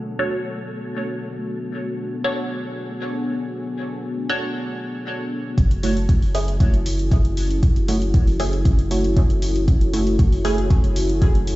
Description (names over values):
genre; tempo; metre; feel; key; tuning
dub techno; 117 BPM; 4/4; straight; F# minor; A4 = 439 Hz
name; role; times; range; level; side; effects
dark analog pad; sustained chords; 0.0-11.6 s; B3 to G#5; -26 LUFS; left 1 dB; chorus, sidechain pumping
flickering grainy texture; texture; 0.0-5.6 s; A3 to A4; -37 LUFS; equal; built-in reverb, sidechain pumping
filtered dub chord stab; stabs; 0.2-10.6 s; A3 to C#5; -28 LUFS; right 1 dB; phaser, dub echo
soft dub sub bass; bass; 5.6-11.6 s; F#1; -22 LUFS; equal; sidechain pumping
electronic hi-hat; drums; 5.6-11.6 s; none; -35 LUFS; left 1 dB; overdrive
electronic kick drum; drums; 5.6-11.3 s; none; -16 LUFS; equal; overdrive
warbly dusty pluck; riff; 5.8-10.9 s; A3 to C#5; -27 LUFS; right 2 dB; chorus, sidechain pumping, dub echo
room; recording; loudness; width
little or no reverb; played on a big sound system in a bare room, stone room reverb, low-pass filter, nothing above 7.8 kHz; -18 LUFS; side -18 dB against mid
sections
0.0-5.6 A section; 5.6-11.6 B section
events
filter sweep on analog synth pad 0.0-5.6; filter sweep 0.0-5.6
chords
0.0 Bm7; 5.6 F#m7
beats
0.45 0.96 | 1.47 1.99 2.50 3.01 | 3.53 4.04 4.55 5.06 | 5.58 6.09 6.60 7.12 | 7.63 8.14 8.65 9.17 | 9.68 10.19 10.71 11.22